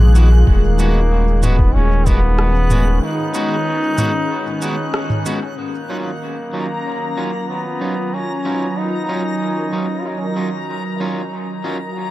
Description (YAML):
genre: ambient dub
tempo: 94 BPM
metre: 4/4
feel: straight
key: Eb minor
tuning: A4 = 441 Hz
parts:
  - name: brilliant trombone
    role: melody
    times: 0.0-10.4 s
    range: Bb3 to F4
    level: -23 LUFS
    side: equal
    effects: dub echo
  - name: warm analog pad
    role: sustained chords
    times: 0.0-12.1 s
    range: Eb3 to Bb4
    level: -23 LUFS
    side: equal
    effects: chorus
  - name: soft dub sub bass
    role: bass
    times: 0.0-3.0 s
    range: Eb1 to Bb1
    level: -13 LUFS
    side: equal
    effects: none
  - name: organic electronic drum kit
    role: drums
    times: 0.0-5.4 s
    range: rim click, shaker, toms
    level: -24 LUFS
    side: equal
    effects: low-pass filter on perc, studio ambience, low-pass filter on toms, low-pass filter on snare, dub echo
  - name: backwards swelling texture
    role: texture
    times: 0.0-12.1 s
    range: Bb5 to Gb6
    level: -31 LUFS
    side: left 2 dB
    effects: built-in reverb
  - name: electric guitar at the edge of break-up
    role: stabs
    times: 0.2-11.8 s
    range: Gb3 to Gb4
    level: -26 LUFS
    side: right 1 dB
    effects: dub echo
  - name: electronic kick drum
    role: drums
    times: 0.5-2.2 s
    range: none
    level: -15 LUFS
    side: equal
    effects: studio ambience
room: little or no reverb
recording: dark, warm production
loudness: -16 LUFS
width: side -16 dB against mid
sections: 0.0-5.6 A section; 5.6-12.1 B section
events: break 3.0-5.6; band accent 4.9-5.3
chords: 0.0 Abm7/Eb; 5.6 Ebm9